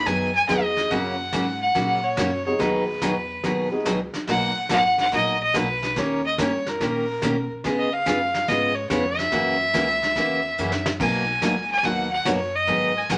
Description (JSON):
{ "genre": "country, western swing", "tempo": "143 BPM", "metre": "4/4", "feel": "swing 67% on 8ths", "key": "B major", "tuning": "A4 = 440 Hz", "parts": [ { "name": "clear fiddle", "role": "melody", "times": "0.0-13.2 s", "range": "A#4 to G#5", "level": "-25 LUFS", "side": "equal", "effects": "none" }, { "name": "upright bass", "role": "bass", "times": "0.0-13.2 s", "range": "G#1 to C#3", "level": "-37 LUFS", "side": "equal", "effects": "none" }, { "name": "picked steel-string acoustic guitar", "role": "accompaniment", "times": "0.1-13.2 s", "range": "B2 to A#4", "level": "-28 LUFS", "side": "equal", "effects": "none" }, { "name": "vintage brush drum kit", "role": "drums", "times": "0.1-13.2 s", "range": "brushed snare drum, crash cymbal, hi-hat, kick drum, snare drum", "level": "-33 LUFS", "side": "equal", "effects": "none" }, { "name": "dark upright piano", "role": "accompaniment", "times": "0.5-3.8, 11.0-11.3 s", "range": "F#3 to A#4", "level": "-29 LUFS", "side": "equal", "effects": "none" } ], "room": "wet studio ambience, RT60 0.5 s", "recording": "none", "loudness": "-23 LUFS", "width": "mono", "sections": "0.0-4.3 A section; 4.3-13.2 A section", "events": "drum fill 10.6-11.0", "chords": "0.0 G#m7; 0.9 F#; 2.6 B6; 4.3 Bmaj7; 6.0 D#7; 7.6 C#7; 9.3 F#7; 11.0 Bmaj7", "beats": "0.07 0.49 | 0.91 1.33 1.76 2.18 | 2.60 3.02 3.44 3.86 | 4.28 4.71 5.13 5.55 | 5.97 6.39 6.81 7.23 | 7.65 8.07 8.49 8.91 | 9.33 9.75 10.16 10.59 | 11.00 11.42 11.84 12.26 | 12.68 13.10" }